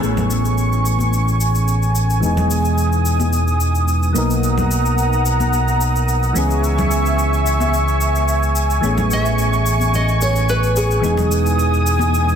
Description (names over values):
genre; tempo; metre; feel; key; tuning
sunset chillout; 109 BPM; 4/4; straight; unclear; A4 = 440 Hz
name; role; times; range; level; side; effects
soft electric-piano-like synth keys; accompaniment; 0.0-12.4 s; E3 to A#4; -22 LUFS; moving between left 2 dB and right 4 dB; chorus, auto-pan, vintage 12-bit sampler grit, low-pass filter, ping-pong delay
lush unison pad; sustained chords; 0.0-12.4 s; E5 to D#6; -21 LUFS; right 1 dB; chorus
overdriven fingered electric bass; bass; 0.0-12.4 s; E1 to C#2; -18 LUFS; equal; none
shaker; drums; 0.0-12.4 s; none; -29 LUFS; left 3 dB; overdrive
congas; percussion; 0.2-12.1 s; none; -28 LUFS; left 3 dB; none
nylon-string guitar; melody; 9.1-11.6 s; G#4 to E5; -22 LUFS; equal; ping-pong delay
room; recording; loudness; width
moderate concert hall reverb, RT60 2.3 s; dense, heavily limited modern master; -15 LUFS; side -8 dB against mid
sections
0.0-12.4 A section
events
none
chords
0.0 Amaj9; 2.2 Emaj7; 4.2 Bmaj7; 6.4 C#m7; 8.8 Amaj9; 11.0 Emaj7